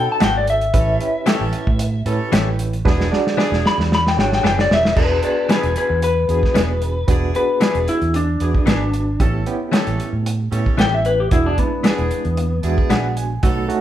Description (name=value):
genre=straight-eighth soul blues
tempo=114 BPM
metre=4/4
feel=swing 53% on 16ths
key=E mixolydian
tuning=A4 = 440 Hz
part: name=electric slide guitar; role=melody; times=0.0-12.9 s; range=B3 to B5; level=-20 LUFS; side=left 3 dB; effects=none
part: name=bright reed electric piano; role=accompaniment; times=0.0-13.8 s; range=G#3 to G#5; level=-25 LUFS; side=right 4 dB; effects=overdrive, fast tremolo
part: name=bright horn section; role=sustained chords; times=0.0-13.7 s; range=B3 to A4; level=-31 LUFS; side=right 1 dB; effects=none
part: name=vintage muted fingered electric bass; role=bass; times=0.0-13.7 s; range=E1 to A2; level=-21 LUFS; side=right 1 dB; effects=none
part: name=direct-recorded clean electric guitar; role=stabs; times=0.2-13.1 s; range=E3 to G#4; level=-24 LUFS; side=left 4 dB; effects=none
part: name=warm soul drum kit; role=drums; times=0.2-13.8 s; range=crash cymbal, hi-hat, kick drum, snare drum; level=-19 LUFS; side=equal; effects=none
room=light reverb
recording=band playing live in one room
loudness=-15 LUFS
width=side -12 dB against mid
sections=0.0-5.0 A section; 5.0-13.8 B section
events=electric slide guitar solo 0.0-5.0; drum fill 2.9-5.0; reed electric piano fill 12.4-13.4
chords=0.0 B7; 0.7 A7; 2.9 E7; 9.2 A7; 11.3 E7